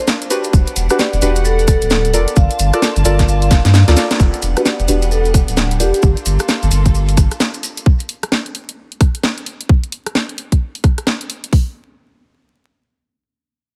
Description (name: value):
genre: UK garage, two-step garage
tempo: 131 BPM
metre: 4/4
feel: swing 62% on 16ths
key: E minor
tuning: A4 = 440 Hz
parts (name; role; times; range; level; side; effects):
- dark studio violin section; sustained chords; 0.0-7.8 s; G3 to A5; -30 LUFS; equal; sidechain pumping
- deep mellow chord stab; stabs; 0.0-6.3 s; D4 to D5; -23 LUFS; equal; chorus, dub echo
- garage drum kit; drums; 0.1-11.5 s; hi-hat, rim click, snare drum; -21 LUFS; equal; none
- maracas; percussion; 0.1-7.8 s; none; -29 LUFS; equal; dub echo
- saturated sub bass; bass; 0.5-7.3 s; D1 to G2; -16 LUFS; equal; sidechain pumping
- garage drum kit; drums; 0.5-11.7 s; hi-hat, kick drum; -14 LUFS; equal; none
- vibraphone with medium mallets; melody; 1.0-6.0 s; G4 to F5; -25 LUFS; equal; dub echo
room: light reverb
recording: echo-heavy mix, vinyl crackle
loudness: -15 LUFS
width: mono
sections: 0.0-4.2 A section; 4.2-11.5 B section; 11.5-13.8 C section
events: drop 0.0-4.2; drum fill 3.5-4.2; band accent 4.1; filter sweep on synth stab 4.2-6.0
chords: 0.0 Gm9; 0.5 Em9; 2.4 Gm9; 4.2 Em9; 6.0 Gm9; 7.9 N.C.